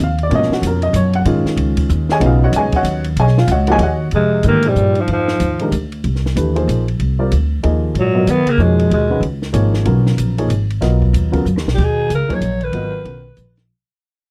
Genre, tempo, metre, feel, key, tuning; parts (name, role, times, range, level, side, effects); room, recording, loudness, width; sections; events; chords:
modal jazz; 188 BPM; 3/4; swing 61% on 8ths; A4 = 440 Hz
warm baby grand piano; accompaniment; 0.0-13.2 s; Cb3 to Ab5; -21 LUFS; equal
upright bass; bass; 0.0-13.7 s; Ab1 to Ab2; -18 LUFS; equal
compact cocktail drum kit; drums; 0.2-13.6 s; crash cymbal, hi-hat, kick drum, ride cymbal, snare drum; -28 LUFS; equal
dark bass clarinet; second line; 4.1-5.7, 8.0-9.2, 11.7-13.6 s; Ab2 to Gb3; -23 LUFS; equal
growling alto saxophone; melody; 4.2-5.7, 8.0-9.2, 11.7-13.6 s; F3 to Db5; -20 LUFS; equal
little or no reverb; dry, close 1970s-style studio recording; -16 LUFS; mono
0.0-4.1 A section; 4.1-11.8 B section; 11.8-13.7 C section
drum fill 11.5-11.8; fade-out 11.8-13.7
0.3 Abm11; 4.1 Fm11; 8.0 Abm11